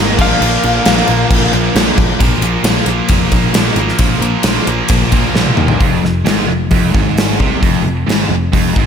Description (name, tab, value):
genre	hard rock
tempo	133 BPM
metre	4/4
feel	straight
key	unclear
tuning	A4 = 441 Hz
part	lightly driven lead guitar	melody	0.0-1.7 s	Eb5 to F5	-19 LUFS	left 3 dB	slapback echo
part	octave-fuzz lead guitar	second line	0.0-1.7 s	Bb3	-24 LUFS	right 3 dB	distortion, slapback echo
part	crunchy overdriven guitar	riff	0.0-2.2 s	Bb2 to Eb4	-21 LUFS	equal	harmonic tremolo, slapback echo
part	sludgy distorted guitar	riff	0.0-8.9 s	F2 to Eb4	-19 LUFS	left 9 dB	overdrive, slapback echo
part	tight distorted guitar	riff	0.0-8.9 s	F2 to Eb4	-18 LUFS	right 10 dB	distortion, slapback echo
part	picked electric bass	bass	0.0-8.9 s	F1 to Eb2	-18 LUFS	equal	none
part	gated 80s drum kit	drums	0.2-8.9 s	crash cymbal, hi-hat, kick drum, ride cymbal, snare drum, toms	-14 LUFS	equal	none
room	light reverb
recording	none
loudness	-10 LUFS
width	side -7 dB against mid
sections	0.0-2.2 A section; 2.2-5.8 B section; 5.8-8.9 C section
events	drum fill 5.4-5.8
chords	0.2 Bb; 2.2 Bb5; 5.8 Fm